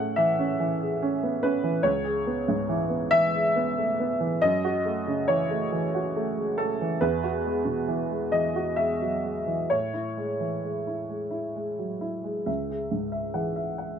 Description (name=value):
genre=neoclassical minimalist piano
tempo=64-72 BPM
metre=3/4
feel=rubato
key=unclear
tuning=A4 = 442 Hz
part: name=warm upright piano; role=solo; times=0.0-14.0 s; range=C#2 to F#5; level=-24 LUFS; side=equal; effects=none
room=light reverb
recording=close, detailed microphones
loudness=-24 LUFS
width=side -8 dB against mid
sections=0.0-12.5 A section; 12.5-14.0 B section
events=none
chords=0.0 Amaj7; 1.9 C#m7; 4.4 F#m7; 7.0 Eadd9; 9.7 Amaj7; 12.5 C#m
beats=0.17 1.02 | 1.86 2.70 3.56 | 4.42 5.28 6.14 | 7.01 7.88 8.77 | 9.70 10.64 11.56 | 12.48 13.35